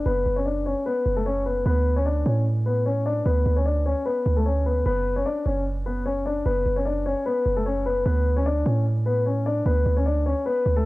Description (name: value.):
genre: hip hop, trap.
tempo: 150 BPM.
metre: 4/4.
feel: half-time.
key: unclear.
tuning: A4 = 442 Hz.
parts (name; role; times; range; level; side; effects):
dark concert grand piano; melody; 0.0-10.8 s; A3 to D5; -24 LUFS; left 3 dB; low-pass filter, cassette tape.
Celtic harp; accompaniment; 0.0-0.8 s; none; barely audible; none; none.
warm 808-style bass; bass; 0.1-10.9 s; F#1 to A2; -23 LUFS; right 1 dB; none.
room: small room ambience.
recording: home recording on cassette.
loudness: -21 LUFS.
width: side -19 dB against mid.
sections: 0.0-10.9 A section.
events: none.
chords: 0.0 F#m; 1.7 D5; 4.9 F#5; 8.1 D5.